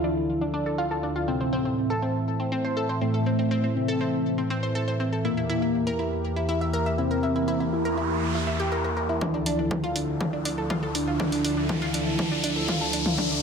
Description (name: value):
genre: melodic techno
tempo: 121 BPM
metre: 4/4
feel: straight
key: D minor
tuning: A4 = 441 Hz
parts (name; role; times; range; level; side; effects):
- wide unison lead; melody; 0.0-13.4 s; A3 to E4; -29 LUFS; left 1 dB; sidechain pumping, tape echo
- warm analog pad; sustained chords; 0.0-13.4 s; D2 to E5; -28 LUFS; equal; wide subtle chorus, sidechain pumping
- analog pluck; arpeggios; 0.0-13.4 s; C4 to E5; -29 LUFS; equal; chorus, sidechain pumping, ping-pong delay
- noise sweep and riser; sound effects; 7.6-13.4 s; none; -31 LUFS; equal; none
- electronic kick drum; drums; 9.2-13.3 s; none; -34 LUFS; equal; high-pass filter on kick, high-pass filter on room
- punchy analog drum machine; drums; 9.2-13.3 s; hi-hat, toms; -29 LUFS; left 1 dB; none
room: moderate digital room reverb, RT60 1.1 s, digital ambience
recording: low-pass filter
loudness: -23 LUFS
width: side -6 dB against mid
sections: 0.0-9.2 A section; 9.2-13.4 B section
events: filter sweep on analog synth lead 0.0-9.2, 9.2-13.4; filter sweep 0.0-9.2, 9.2-13.4; noise sweep 7.6-9.2; build-up 9.2-13.4; drum fill 9.2-13.4; riser 9.2-13.4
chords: 0.0 Dmadd9; 1.3 Am; 5.2 Edim; 9.2 Dmadd9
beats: 0.29 0.78 | 1.28 1.78 2.27 2.77 | 3.26 3.76 4.25 4.75 | 5.25 5.74 6.24 6.74 | 7.23 7.73 8.22 8.72 | 9.21 9.71 10.21 10.70 | 11.20 11.69 12.19 12.69 | 13.18